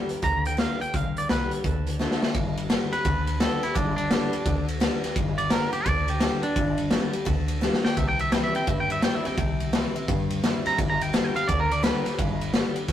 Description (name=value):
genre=rockabilly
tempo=171 BPM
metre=4/4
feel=swing 63% on 8ths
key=G major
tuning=A4 = 437 Hz
part: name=picked steel-string acoustic guitar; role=accompaniment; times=0.0-12.9 s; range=G2 to G4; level=-31 LUFS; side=left 1 dB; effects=none
part: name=upright bass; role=bass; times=0.1-12.9 s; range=G1 to G2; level=-31 LUFS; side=right 1 dB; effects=none
part: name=raw garage drum kit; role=drums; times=0.1-12.9 s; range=hi-hat, kick drum, ride cymbal, snare drum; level=-25 LUFS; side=left 1 dB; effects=none
part: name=twangy electric guitar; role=melody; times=0.2-12.9 s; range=D4 to Bb5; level=-28 LUFS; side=right 2 dB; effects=tape echo
room=light reverb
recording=rough rehearsal-room recording, tube saturation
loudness=-22 LUFS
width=side -11 dB against mid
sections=0.0-2.3 A section; 2.3-12.9 B section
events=drum fill 2.0-2.3, 7.6-8.0; clean electric guitar solo 2.3-12.9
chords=0.0 G; 1.6 D; 2.3 G; 8.0 C; 10.8 G